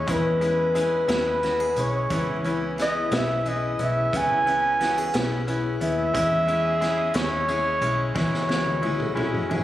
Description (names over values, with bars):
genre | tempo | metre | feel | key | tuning
six-eight pop ballad | 59 BPM (dotted quarters) | 6/8 | straight | unclear | A4 = 438 Hz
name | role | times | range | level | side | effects
breathy flugelhorn | melody | 0.0-9.5 s | B4 to G#5 | -24 LUFS | equal | none
picked steel-string acoustic guitar | arpeggios | 0.0-9.6 s | E3 to G#4 | -33 LUFS | right 1 dB | digital delay
vintage muted fingered electric bass | bass | 0.0-9.6 s | B1 to E2 | -30 LUFS | equal | none
clear concert grand piano | accompaniment | 0.1-9.6 s | G#3 to E4 | -29 LUFS | left 3 dB | none
unplugged drum kit | drums | 0.1-9.6 s | hi-hat, kick drum, snare drum, toms | -30 LUFS | right 1 dB | none
dark French horn section | second line | 2.1-9.6 s | E4 to G#4 | -35 LUFS | left 6 dB | none
room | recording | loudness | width
light reverb, small room ambience | recorded on a phone in the room, studio reverb | -21 LUFS | side -13 dB against mid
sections
0.0-9.6 A section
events
drum fill 8.2-9.6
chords
0.0 E6; 8.2 C#m